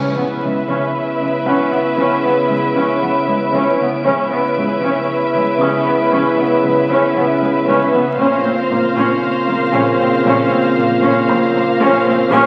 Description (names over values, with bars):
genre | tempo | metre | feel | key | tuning
cinematic | 58 BPM | 4/4 | straight | unclear | A4 = 439 Hz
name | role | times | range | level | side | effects
muted studio violin section | melody | 0.0-12.5 s | E5 to E#5 | -26 LUFS | equal | none
muted studio violin section | second line | 0.0-12.5 s | B4 to B#4 | -23 LUFS | equal | none
muted studio viola section | accompaniment | 0.0-12.5 s | G#3 to C#4 | -21 LUFS | equal | none
dark French horn section | sustained chords | 0.0-12.5 s | B#3 to E#4 | -24 LUFS | equal | none
warbly tape-like pad | sustained chords | 0.0-12.5 s | A#4 to E#5 | -28 LUFS | equal | none
warm trombone section | sustained chords | 0.0-12.5 s | C#3 to B3 | -24 LUFS | equal | none
impact | sound effects | 0.0-4.0 s | none | -36 LUFS | equal | none
muted studio violin section | texture | 0.0-12.5 s | C#5 to D7 | -32 LUFS | equal | none
muted studio cello section | bass | 0.2-12.4 s | A#2 to C#3 | -26 LUFS | equal | none
muted studio double bass section | bass | 0.4-12.4 s | A#1 to C#2 | -32 LUFS | equal | none
clear baby grand piano | texture | 1.5-12.5 s | B#4 to F#6 | -32 LUFS | equal | none
room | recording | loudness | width
wet recital hall reverb, RT60 1.6 s | very old 78 rpm record, vinyl crackle | -15 LUFS | mono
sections
0.0-12.5 A section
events
impact 0.0-4.0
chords
0.0 C#m7; 8.2 A#madd9